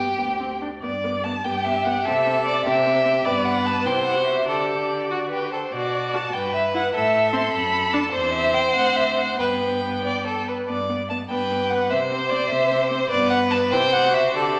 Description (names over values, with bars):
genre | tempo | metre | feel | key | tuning
quick classical-period movement for string quartet | 92-102 BPM (dotted quarters) | 6/8 | rubato | G major | A4 = 440 Hz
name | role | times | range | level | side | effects
rich violin | melody | 0.0-14.6 s | B4 to C6 | -26 LUFS | equal | none
rich violin | second line | 0.0-14.6 s | F#4 to D5 | -26 LUFS | equal | none
warm viola | accompaniment | 0.0-14.6 s | B3 to G4 | -32 LUFS | equal | none
rich cello | bass | 0.0-14.6 s | D2 to D3 | -33 LUFS | equal | none
room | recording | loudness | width
wet scoring stage reverb, RT60 1.5 s | none | -22 LUFS | mono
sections
0.8-10.7 A section; 10.7-14.6 B section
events
none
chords
0.0 G5; 0.8 G; 2.1 C; 3.3 G; 3.9 C; 4.5 Dsus4; 5.1 D; 5.7 Bm; 6.3 Em/G; 6.9 Am; 7.5 D/F#; 8.1 C/E; 8.8 D9; 9.4 G; 11.9 C; 13.1 G; 13.7 C